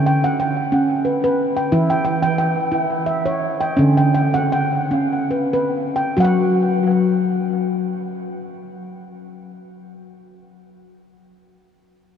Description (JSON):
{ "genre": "world meditative, meditative tuned percussion", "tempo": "68-90 BPM", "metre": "3/4", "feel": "swing 54% on 16ths", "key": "unclear", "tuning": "A4 = 438 Hz", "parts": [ { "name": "handpan", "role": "solo", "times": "0.0-10.5 s", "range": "D3 to G5", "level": "-17 LUFS", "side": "equal", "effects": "analog delay" } ], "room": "wet huge ambient reverb, RT60 7.7 s", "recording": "dreamy mix soaked in reverb", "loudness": "-16 LUFS", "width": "side -8 dB against mid", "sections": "0.0-6.2 A section; 6.2-11.5 B section", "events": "slowing down 1.7-6.2", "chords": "0.0 D; 1.7 Em6; 3.8 D; 6.2 N.C." }